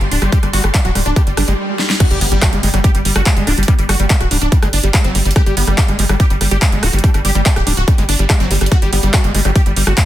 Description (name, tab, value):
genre	psychedelic trance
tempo	143 BPM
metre	4/4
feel	straight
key	G major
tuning	A4 = 440 Hz
part	supersaw stab	melody	0.0-10.0 s	G3 to G4	-21 LUFS	equal	phaser, sidechain pumping, dub echo
part	tight sequencer bass	bass	0.0-9.9 s	D1 to G1	-16 LUFS	equal	none
part	big-room dance drum kit	drums	0.0-10.1 s	crash cymbal, handclaps, hi-hat, rim click, snare drum	-19 LUFS	equal	none
part	dark chamber string section	texture	0.0-1.6 s	G4 to C6	-30 LUFS	equal	sidechain pumping
part	screaming distorted acid line	riff	0.2-10.1 s	F#3 to G4	-24 LUFS	equal	distortion, chorus, auto-pan, cassette tape, sidechain pumping, digital delay
part	electronic kick drum	drums	0.3-10.1 s	none	-13 LUFS	equal	none
part	swell and impact	sound effects	1.3-3.7 s	none	-24 LUFS	equal	none
part	resonant blip pluck	second line	2.2-9.2 s	G3 to G4	-31 LUFS	right 2 dB	none
room	little or no reverb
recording	dense, heavily limited modern master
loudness	-11 LUFS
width	side -13 dB against mid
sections	0.0-2.0 A section; 2.0-10.1 B section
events	swell 1.3-2.0; stop 1.6-2.0; drum fill 1.8; drop 2.0-10.1; impact 2.0-3.7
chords	0.0 G5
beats	| 0.32 0.74 1.16 1.58 | 2.00 2.42 2.84 3.26 | 3.68 4.10 4.52 4.94 | 5.36 5.78 6.20 6.62 | 7.04 7.46 7.88 8.30 | 8.72 9.14 9.55 9.97